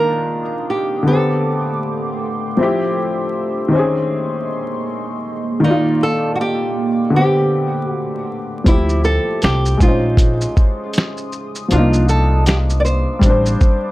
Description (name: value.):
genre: lo-fi hip hop.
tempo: 79 BPM.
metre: 4/4.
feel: swing 59% on 16ths.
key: unclear.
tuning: A4 = 440 Hz.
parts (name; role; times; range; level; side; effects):
nylon-string guitar; melody; 0.0-13.6 s; Eb4 to D5; -20 LUFS; right 2 dB; none.
warm upright piano; accompaniment; 0.0-13.9 s; D3 to D5; -19 LUFS; left 1 dB; none.
deep dark ambient pad; sustained chords; 0.0-13.9 s; A3 to Eb6; -26 LUFS; right 2 dB; chorus, built-in reverb.
upright bass; bass; 8.7-13.5 s; A1 to D2; -16 LUFS; equal; none.
lo-fi sampler-style drum kit; drums; 8.7-13.8 s; finger snaps, hi-hat, kick drum, shaker, snare drum; -15 LUFS; equal; none.
room: moderate studio reverb, RT60 0.6 s.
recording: vinyl crackle.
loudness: -14 LUFS.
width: side -17 dB against mid.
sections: 0.0-13.9 A section.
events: none.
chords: 0.0 Cm11; 1.1 Am11; 2.6 Dm11; 3.7 Bbm11; 5.6 Cm11; 7.2 Am11; 8.7 Dm11; 9.8 Bbm11; 11.7 Cm11; 13.2 Am11.